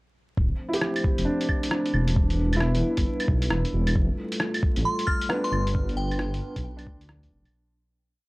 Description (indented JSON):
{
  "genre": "future garage",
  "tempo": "134 BPM",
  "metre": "4/4",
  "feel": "swing 64% on 16ths",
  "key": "D dorian",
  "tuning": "A4 = 440 Hz",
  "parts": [
    { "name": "dark analog pad", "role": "sustained chords", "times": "0.4-7.5 s", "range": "F3 to C5", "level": "-31 LUFS", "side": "equal", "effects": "chorus, sidechain pumping" },
    { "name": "dark detuned saw bass", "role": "bass", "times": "0.4-7.4 s", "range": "D1 to D2", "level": "-25 LUFS", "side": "equal", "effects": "sidechain pumping" },
    { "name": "electronic kick drum", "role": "drums", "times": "0.4-7.0 s", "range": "none", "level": "-25 LUFS", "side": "equal", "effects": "overdrive" },
    { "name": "felt-muted upright piano", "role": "accompaniment", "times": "0.7-7.7 s", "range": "B3 to G4", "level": "-31 LUFS", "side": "right 1 dB", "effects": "sidechain pumping, low-pass filter, analog delay" },
    { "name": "lo-fi sampler-style drum kit", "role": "drums", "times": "0.7-7.5 s", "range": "claves, hi-hat, rim click", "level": "-30 LUFS", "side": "equal", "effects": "overdrive" },
    { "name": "glassy synth bell", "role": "melody", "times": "4.9-6.4 s", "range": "G5 to F6", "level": "-30 LUFS", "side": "equal", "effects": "chorus, phaser, vintage 12-bit sampler grit" }
  ],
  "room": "little or no reverb",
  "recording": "dry, gritty hardware recording, vinyl crackle, faint mains hum",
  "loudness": "-22 LUFS",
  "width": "side -22 dB against mid",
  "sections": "0.4-7.5 groove",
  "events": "fade-out 5.2-7.5",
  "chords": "0.4 Dm7; 2.2 Em7; 4.0 Fadd9; 5.7 G7"
}